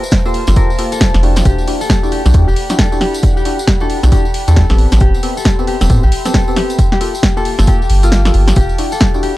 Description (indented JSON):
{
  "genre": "UK garage, two-step garage",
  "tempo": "135 BPM",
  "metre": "4/4",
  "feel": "swing 61% on 16ths",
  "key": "E minor",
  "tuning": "A4 = 436 Hz",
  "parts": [
    { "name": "concert harp", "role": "melody", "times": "0.0-9.4 s", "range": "F4 to C5", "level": "-21 LUFS", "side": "left 4 dB", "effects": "vintage 12-bit sampler grit, dub echo" },
    { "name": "ethereal airy pad", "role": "sustained chords", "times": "0.0-9.4 s", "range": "Bb3 to D6", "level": "-29 LUFS", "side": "right 1 dB", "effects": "ensemble chorus, built-in reverb, sidechain pumping" },
    { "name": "percussive organ stab", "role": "stabs", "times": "0.0-9.3 s", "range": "Bb3 to A4", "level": "-21 LUFS", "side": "equal", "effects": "wide subtle chorus" },
    { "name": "tambourine", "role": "percussion", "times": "0.0-9.2 s", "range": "none", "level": "-30 LUFS", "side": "left 1 dB", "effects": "none" },
    { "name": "electronic kick drum", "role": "drums", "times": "0.1-9.1 s", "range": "none", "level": "-14 LUFS", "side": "equal", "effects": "none" },
    { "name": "house drum kit", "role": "drums", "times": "0.1-9.3 s", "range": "hi-hat, snare drum", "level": "-17 LUFS", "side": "equal", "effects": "none" },
    { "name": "soft dub sub bass", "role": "bass", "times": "0.5-8.7 s", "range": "E1 to A2", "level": "-10 LUFS", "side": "equal", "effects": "none" }
  ],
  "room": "little or no reverb",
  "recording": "dark, warm production, faint mains hum",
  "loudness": "-10 LUFS",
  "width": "side -17 dB against mid",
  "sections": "0.0-9.4 A section",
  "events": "kick drops out 8.1-8.6",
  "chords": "0.0 Gm9; 1.5 Em9; 4.8 Am9; 6.8 Gm9; 8.6 Em9"
}